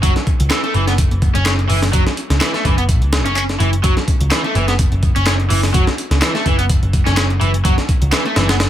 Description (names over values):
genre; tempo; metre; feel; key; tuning
breakbeat, breaks; 126 BPM; 4/4; swing 55% on 16ths; F# minor pentatonic; A4 = 440 Hz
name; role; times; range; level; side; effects
raw garage guitar; riff; 0.0-8.5 s; E3 to C#4; -20 LUFS; equal; overdrive, dub echo
hollow-body short-scale picked electric bass; bass; 0.0-8.7 s; F#1 to C#2; -17 LUFS; equal; none
breakbeat sampler-style drum kit; drums; 0.0-8.7 s; hi-hat, kick drum, snare drum; -17 LUFS; equal; none
punchy analog drum machine; drums; 0.0-8.7 s; handclaps, hi-hat; -26 LUFS; equal; none
room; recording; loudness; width
little or no reverb; none; -13 LUFS; side -11 dB against mid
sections
0.0-8.7 A section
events
none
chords
0.0 F#7(no3)